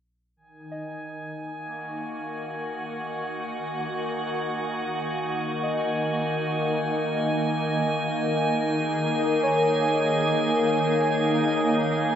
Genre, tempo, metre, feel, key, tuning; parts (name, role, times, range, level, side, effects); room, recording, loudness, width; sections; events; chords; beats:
ambient; free time; Eb minor; A4 = 440 Hz
soft additive organ-like pad; sustained chords; 0.6-12.2 s; Eb3 to Ab4; -25 LUFS; left 1 dB; ensemble chorus, built-in reverb
drifting glass-harmonics texture; texture; 0.6-12.2 s; Ab5; -30 LUFS; right 2 dB; chorus, built-in reverb
muted felt-like synth keys; arpeggios; 0.7-12.2 s; Db5 to Eb5; -34 LUFS; right 2 dB; chorus, tape echo
wet spring reverb, RT60 2.6 s; echo-heavy mix; -23 LUFS; side -9 dB against mid
0.4-12.2 A section
fade-in on synth keys 0.4-12.2
0.4 Ebm7
free time